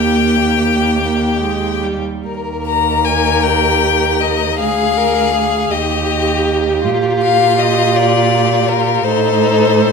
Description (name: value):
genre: classical, slow romantic movement for string quartet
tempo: 53 BPM (dotted quarters)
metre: 6/8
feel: uneven beats, rubato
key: Eb major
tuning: A4 = 440 Hz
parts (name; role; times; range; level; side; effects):
- clear violin; melody; 0.0-9.9 s; Bb4 to Bb5; -16 LUFS; left 10 dB; none
- clear violin; second line; 0.0-9.9 s; Eb4 to Bb4; -18 LUFS; left 2 dB; none
- rich viola; accompaniment; 0.0-9.9 s; G3 to Bb4; -18 LUFS; right 3 dB; none
- rich cello; bass; 0.0-9.9 s; D2 to Bb2; -19 LUFS; right 5 dB; none
room: wet recital hall reverb, RT60 1.5 s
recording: none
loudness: -12 LUFS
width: side -5 dB against mid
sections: 0.0-2.3 A section; 2.3-9.9 A section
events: none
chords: 0.0 Eb; 4.6 Ddim; 5.7 Eb; 6.8 Bb; 9.1 Adim